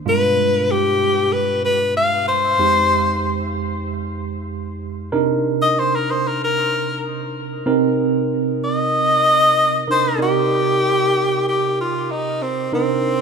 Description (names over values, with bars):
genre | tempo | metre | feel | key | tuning
blues | 95 BPM | 4/4 | straight | C minor | A4 = 440 Hz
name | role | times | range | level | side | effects
clear tenor saxophone | melody | 0.1-13.2 s | C4 to F5 | -17 LUFS | left 2 dB | analog delay
tine electric piano | accompaniment | 0.1-13.2 s | F2 to D5 | -21 LUFS | right 5 dB | medium stereo tremolo
room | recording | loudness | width
moderate large studio reverb, RT60 1.1 s | band playing live in one room | -16 LUFS | side -5 dB against mid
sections
0.0-10.2 A section; 10.2-13.2 A section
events
none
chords
0.1 G7b9; 2.6 Fm7; 5.1 Cm7